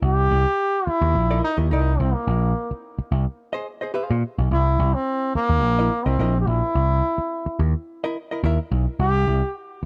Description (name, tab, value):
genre	funk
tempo	107 BPM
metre	4/4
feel	straight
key	C mixolydian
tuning	A4 = 444 Hz
part	picked electric bass	bass	0.0-9.9 s	Bb1 to Bb2	-22 LUFS	equal	none
part	brilliant trombone	melody	0.1-9.5 s	Bb3 to G4	-25 LUFS	equal	none
part	hollow-body jazz guitar	accompaniment	1.3-8.6 s	E4 to F5	-32 LUFS	equal	none
room	small room ambience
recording	none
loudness	-22 LUFS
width	mono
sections	0.0-9.9 A section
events	none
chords	0.0 C7#9; 2.3 Bb9sus4; 4.5 C7#9